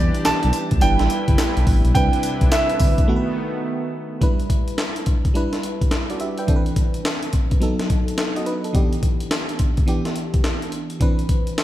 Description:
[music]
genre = R&B, new jack swing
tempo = 106 BPM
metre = 4/4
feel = swing 64% on 16ths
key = unclear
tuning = A4 = 440 Hz
[part]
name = clear concert grand piano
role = melody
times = 0.0-3.9 s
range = D5 to A5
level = -24 LUFS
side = right 3 dB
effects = slapback echo, tape echo
[part]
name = FM electric piano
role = accompaniment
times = 0.0-11.6 s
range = D#3 to G5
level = -25 LUFS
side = right 1 dB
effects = chorus
[part]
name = brassy analog pad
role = sustained chords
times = 0.0-4.2 s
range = C3 to B4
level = -27 LUFS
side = equal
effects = chorus
[part]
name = smooth synth bass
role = bass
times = 0.0-2.9 s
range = G1 to E2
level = -20 LUFS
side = equal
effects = none
[part]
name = breakbeat sampler-style drum kit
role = drums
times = 0.1-11.6 s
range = handclaps, hi-hat, kick drum, snare drum, tambourine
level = -20 LUFS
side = equal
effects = none
[sound]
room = light reverb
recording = none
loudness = -18 LUFS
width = side -14 dB against mid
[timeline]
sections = 0.0-4.2 A section; 4.2-11.6 B section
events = break 3.1-4.2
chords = 0.0 Em7; 0.8 G6; 2.0 Cmaj9; 3.1 B7; 4.2 G6; 6.5 Cmaj9; 7.6 B7; 8.7 Em7; 11.0 Cmaj9

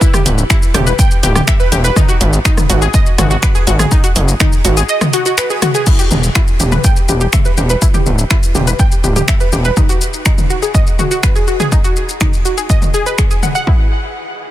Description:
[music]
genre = melodic techno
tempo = 123 BPM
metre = 4/4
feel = straight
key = unclear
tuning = A4 = 440 Hz
[part]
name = analog pluck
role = arpeggios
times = 0.0-13.9 s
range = D#4 to G5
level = -18 LUFS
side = equal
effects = chorus, sidechain pumping, tape echo
[part]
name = electronic kick drum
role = drums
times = 0.0-13.8 s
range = none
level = -12 LUFS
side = equal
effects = none
[part]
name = techno drum kit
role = drums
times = 0.0-13.6 s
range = crash cymbal, finger snaps, hi-hat, rim click, shaker, toms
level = -17 LUFS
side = left 1 dB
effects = soft clipping on snare
[part]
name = gritty driven synth bass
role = bass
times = 0.3-9.7 s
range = D1 to G#1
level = -13 LUFS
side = equal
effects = tube saturation, sidechain pumping
[sound]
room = little or no reverb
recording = dense, heavily limited modern master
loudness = -10 LUFS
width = side -14 dB against mid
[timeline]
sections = 0.0-5.9 A section; 5.9-13.7 B section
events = drop 0.0-5.9; kick drops out 4.9-5.9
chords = 0.0 Em; 2.0 G#7(no3); 5.9 Em; 9.8 G#7(no3); 13.7 N.C.

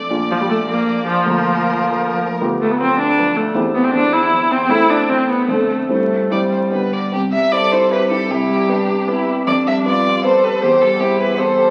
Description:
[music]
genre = quick classical-period movement for piano quartet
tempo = 155 BPM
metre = 3/4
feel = rubato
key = C major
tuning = A4 = 441 Hz
[part]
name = clear violin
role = melody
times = 0.0-11.7 s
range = G4 to E5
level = -21 LUFS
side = equal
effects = none
[part]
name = warm cello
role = second line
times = 0.0-11.7 s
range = D3 to A4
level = -29 LUFS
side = equal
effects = none
[part]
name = warm concert grand piano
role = accompaniment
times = 0.0-11.7 s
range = Bb1 to D5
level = -21 LUFS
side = equal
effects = none
[part]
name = rich viola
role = accompaniment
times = 0.3-11.7 s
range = F3 to E4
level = -20 LUFS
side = equal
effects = none
[sound]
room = wet recital hall reverb, RT60 1.6 s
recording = very old 78 rpm record, vinyl crackle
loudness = -16 LUFS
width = mono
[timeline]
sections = 0.0-7.1 A section; 7.1-11.7 B section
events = none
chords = 0.1 Bb; 1.3 Bb/D; 2.4 G7/D; 3.6 C/E; 4.7 Am; 5.5 Dm7/F; 5.9 C/G; 6.7 G; 7.1 C; 8.3 G/C; 9.5 G7/F; 10.6 C/E

